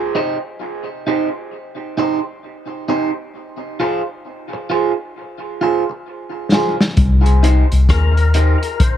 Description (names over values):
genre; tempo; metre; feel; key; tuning
dub reggae; 66 BPM; 4/4; swing 62% on 16ths; C minor; A4 = 440 Hz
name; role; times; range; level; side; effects
electric guitar at the edge of break-up; accompaniment; 0.1-8.6 s; Eb4 to C5; -20 LUFS; right 3 dB; phaser, tape echo
vintage drum kit; drums; 6.5-9.0 s; hi-hat, kick drum, rim click, snare drum; -16 LUFS; left 1 dB; none
mellow tine electric piano; bass; 7.0-8.5 s; C2 to Eb2; -12 LUFS; left 1 dB; lush chorus
percussive tonewheel organ; melody; 7.9-9.0 s; Bb4 to C5; -22 LUFS; left 6 dB; chorus vibrato, slow rotary speaker, tape echo
room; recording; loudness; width
light reverb, studio ambience; echo-heavy mix; -14 LUFS; side -10 dB against mid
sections
0.0-9.0 A section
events
break 0.0-7.0; drum fill 6.1-7.0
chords
0.0 Cm; 3.3 Fm; 7.0 Cm